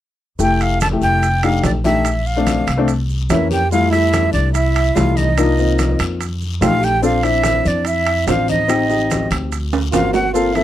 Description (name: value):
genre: Afro-Cuban jazz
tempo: 145 BPM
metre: 4/4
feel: straight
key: F major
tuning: A4 = 440 Hz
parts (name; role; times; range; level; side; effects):
- breathy silver concert flute; melody; 0.4-10.6 s; D5 to A5; -19 LUFS; equal; none
- dark baby grand piano; accompaniment; 0.4-10.6 s; E3 to C5; -19 LUFS; left 4 dB; none
- upright bass; bass; 0.4-10.6 s; F1 to F2; -19 LUFS; equal; none
- congas; percussion; 0.4-10.6 s; none; -27 LUFS; left 2 dB; none
- guiro; percussion; 0.4-10.6 s; none; -33 LUFS; left 10 dB; none
- maracas; percussion; 0.4-10.6 s; none; -33 LUFS; right 19 dB; none
- timbales; percussion; 0.6-10.6 s; none; -24 LUFS; right 7 dB; none
- breathy tenor saxophone; second line; 3.3-10.6 s; D4 to G4; -23 LUFS; right 11 dB; none
room: light reverb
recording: dry, close 1970s-style studio recording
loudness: -14 LUFS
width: side -12 dB against mid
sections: 0.4-3.7 A section; 3.7-10.6 B section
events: drum fill 9.7-10.4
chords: 0.4 Fmaj7; 1.2 F13; 2.1 Bbmaj7; 2.9 C7b9; 3.7 Fmaj9; 5.4 Cm11; 6.2 F9; 7.0 Bbmaj7; 8.7 Am7b5; 9.5 Daug7